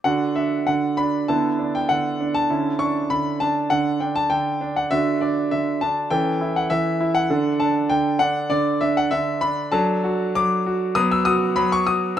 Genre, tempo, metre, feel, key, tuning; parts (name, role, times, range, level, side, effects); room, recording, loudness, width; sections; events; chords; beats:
classical-period piano sonatina; 99 BPM; 4/4; rubato; D major; A4 = 439 Hz
clear grand piano; solo; 0.0-12.2 s; D3 to E6; -19 LUFS; equal
light reverb; -19 LUFS; side -10 dB against mid
0.0-12.2 A section
0.0 D; 1.3 E5/D; 2.5 Dmaj13; 4.9 D; 6.1 A/E; 7.3 D5; 9.7 D/F#; 11.0 B5/F#
| 0.05 0.67 1.28 1.90 | 2.50 3.10 3.71 4.31 | 4.91 5.51 6.11 6.71 | 7.30 7.90 8.51 9.12 | 9.72 10.35 10.96 11.56 | 12.17